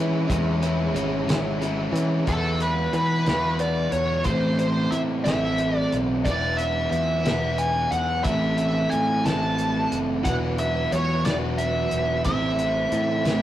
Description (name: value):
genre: psychedelic rock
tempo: 60 BPM (dotted quarters)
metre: 6/8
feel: straight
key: unclear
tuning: A4 = 435 Hz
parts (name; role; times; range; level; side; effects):
- percussive tonewheel organ; sustained chords; 0.0-2.2, 10.3-13.4 s; F#3 to B5; -32 LUFS; right 3 dB; slow rotary speaker, chorus vibrato
- overdriven electric guitar; riff; 0.0-13.4 s; A2 to E4; -26 LUFS; equal; none
- growling picked electric bass; bass; 0.0-13.4 s; E1 to E3; -26 LUFS; equal; overdrive
- cloth-damped thuddy drum kit; drums; 0.3-13.4 s; hi-hat, kick drum, snare drum; -28 LUFS; equal; none
- bluesy overdriven lead guitar; melody; 2.3-13.4 s; A4 to A5; -25 LUFS; equal; wah, distortion
room: wet stone room reverb, RT60 1.3 s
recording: rough rehearsal-room recording, warm saturation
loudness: -21 LUFS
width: side -12 dB against mid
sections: 0.0-2.3 A section; 2.3-13.4 B section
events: none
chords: 0.0 C#m7; 2.3 Esus2; 4.3 Am; 6.3 Esus2; 8.3 Am; 10.3 Esus2; 12.3 Am